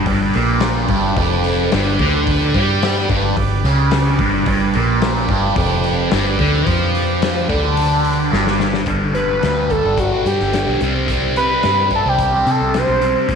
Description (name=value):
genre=psychedelic rock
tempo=109 BPM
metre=4/4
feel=straight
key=G mixolydian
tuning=A4 = 439 Hz
part: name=combo organ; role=sustained chords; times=0.0-8.8 s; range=G4 to D5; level=-24 LUFS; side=right 9 dB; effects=none
part: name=fuzz guitar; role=riff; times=0.0-13.4 s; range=F2 to C4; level=-18 LUFS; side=equal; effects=distortion, phaser
part: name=fingered electric bass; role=bass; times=0.0-13.4 s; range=F1 to C3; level=-21 LUFS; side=equal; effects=none
part: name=raw garage drum kit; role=drums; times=0.1-13.4 s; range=hi-hat, kick drum, snare drum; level=-22 LUFS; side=left 4 dB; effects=none
part: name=overdriven synth lead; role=melody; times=9.1-13.2 s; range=F#4 to C5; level=-17 LUFS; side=equal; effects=distortion, chorus, tape echo
room=moderate echo chamber reverb, RT60 1.7 s, small room ambience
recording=1960s-style stereo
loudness=-14 LUFS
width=side -6 dB against mid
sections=0.0-8.9 A section; 8.9-13.4 B section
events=drum fill 8.3-8.9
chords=0.0 G; 10.8 C5